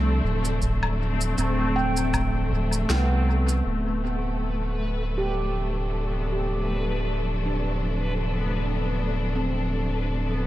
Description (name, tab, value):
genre	ambient dub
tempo	79 BPM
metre	4/4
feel	swing 55% on 16ths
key	D dorian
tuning	A4 = 439 Hz
part	dark symphonic string section	sustained chords	0.0-10.5 s	C3 to A4	-30 LUFS	left 1 dB	none
part	handpan	arpeggios	0.0-10.5 s	B3 to G5	-32 LUFS	right 3 dB	low-pass filter, tape echo
part	soft dub sub bass	bass	0.0-10.5 s	D1 to C2	-25 LUFS	equal	tube saturation
part	backwards swelling texture	texture	0.0-10.5 s	A3 to B4	-33 LUFS	left 2 dB	built-in reverb
part	electronic shaker, woodblock and snare drum	drums	0.4-3.6 s	none	-33 LUFS	left 1 dB	dub echo
part	electronic kick drum	drums	0.6-2.3 s	none	-31 LUFS	equal	none
room	light reverb, digital ambience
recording	none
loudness	-23 LUFS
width	side -14 dB against mid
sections	0.0-3.7 A section; 3.7-10.5 B section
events	band accent 2.9-3.3; filter sweep on handpan 3.7-10.5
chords	0.0 Dm7